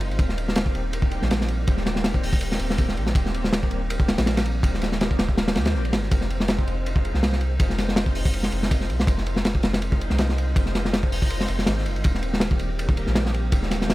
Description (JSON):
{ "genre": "drum and bass, jungle", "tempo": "162 BPM", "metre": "4/4", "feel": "swing 54% on 16ths", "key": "F minor", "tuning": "A4 = 439 Hz", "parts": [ { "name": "soft string machine", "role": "sustained chords", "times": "0.0-13.9 s", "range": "Eb3 to C5", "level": "-31 LUFS", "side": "equal", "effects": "ensemble chorus, vintage 12-bit sampler grit" }, { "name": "soft dub sub bass", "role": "bass", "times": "0.0-13.9 s", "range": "Eb1 to Eb2", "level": "-26 LUFS", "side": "equal", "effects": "none" }, { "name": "crunchy breakbeat drum kit", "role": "drums", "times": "0.0-13.9 s", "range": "hi-hat, kick drum, ride cymbal, snare drum", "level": "-22 LUFS", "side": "equal", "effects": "none" } ], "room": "small room ambience", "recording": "none", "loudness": "-20 LUFS", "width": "side -17 dB against mid", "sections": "0.0-13.9 A section", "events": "none", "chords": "0.2 Cm7/Eb; 6.1 Fm7; 12.0 Cm7/Eb", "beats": "| 0.19 0.56 0.93 1.30 | 1.67 2.04 2.41 2.78 | 3.15 3.52 3.90 4.27 | 4.64 5.01 5.38 5.75 | 6.12 6.49 6.86 7.23 | 7.60 7.97 8.34 8.71 | 9.08 9.45 9.82 10.19 | 10.56 10.93 11.30 11.67 | 12.04 12.41 12.78 13.15 | 13.53 13.89" }